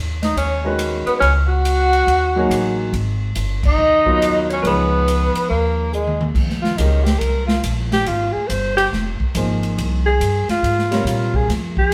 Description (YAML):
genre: modal jazz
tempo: 140 BPM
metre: 4/4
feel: swing 65% on 8ths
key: G# dorian, F minor from 6.4 s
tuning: A4 = 439 Hz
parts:
  - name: upright bass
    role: bass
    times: 0.0-11.9 s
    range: F1 to Bb2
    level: -23 LUFS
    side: equal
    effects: none
  - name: breathy tenor saxophone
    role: melody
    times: 0.2-6.3 s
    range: G#3 to F#4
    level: -20 LUFS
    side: equal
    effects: none
  - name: breathy alto saxophone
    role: second line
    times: 0.2-11.9 s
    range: Eb4 to F#5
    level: -24 LUFS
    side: equal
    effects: none
  - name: swinging big-band drum kit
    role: drums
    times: 0.2-11.9 s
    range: crash cymbal, hi-hat, kick drum, ride cymbal, rim click, snare drum, toms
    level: -26 LUFS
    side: equal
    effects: none
  - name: warm grand piano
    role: accompaniment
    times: 0.6-11.5 s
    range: C3 to D#5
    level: -24 LUFS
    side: equal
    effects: none
room: wet stone room reverb, RT60 1.0 s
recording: band playing live in one room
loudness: -18 LUFS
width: mono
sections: 0.0-6.4 A section; 6.4-11.9 B section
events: band accent 3.6; drum fill 5.9-6.4; alto saxophone solo 6.4-11.9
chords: 0.0 G#9sus4; 6.4 Fm11